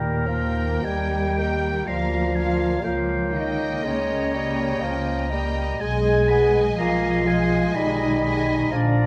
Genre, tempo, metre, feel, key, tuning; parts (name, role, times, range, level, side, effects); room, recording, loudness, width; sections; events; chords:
classical; 61 BPM; 3/4; rubato; Eb major; A4 = 440 Hz
bright small flute group; second line; 0.0-9.1 s; Bb4 to Ab5; -33 LUFS; equal
clear oboe; second line; 0.0-9.1 s; G5 to Cb6; -34 LUFS; equal
dark clarinet; second line; 0.0-9.1 s; Db5 to G5; -36 LUFS; equal
mellow bassoon; accompaniment; 0.0-9.1 s; Eb3 to Cb4; -34 LUFS; equal
mellow French horn section; sustained chords; 0.0-9.1 s; Bb3 to Ab4; -28 LUFS; equal
warm symphonic cello section; bass; 0.0-9.1 s; Bb2 to Ab3; -31 LUFS; equal
warm symphonic double bass section; bass; 0.0-9.1 s; Bb1 to Eb2; -29 LUFS; equal
warm symphonic violin section; melody; 0.3-8.7 s; F5 to Ab5; -38 LUFS; equal
warm symphonic violin section; second line; 0.3-8.7 s; Bb4 to Eb5; -38 LUFS; equal
warm symphonic viola section; accompaniment; 0.3-8.7 s; Ab3 to Bb3; -36 LUFS; equal
moderate scoring stage reverb, RT60 1.5 s; -22 LUFS; mono
0.0-9.1 A section
0.0 Eb; 1.9 Bb/D; 2.9 Eb7/Db; 5.8 Abm/Cb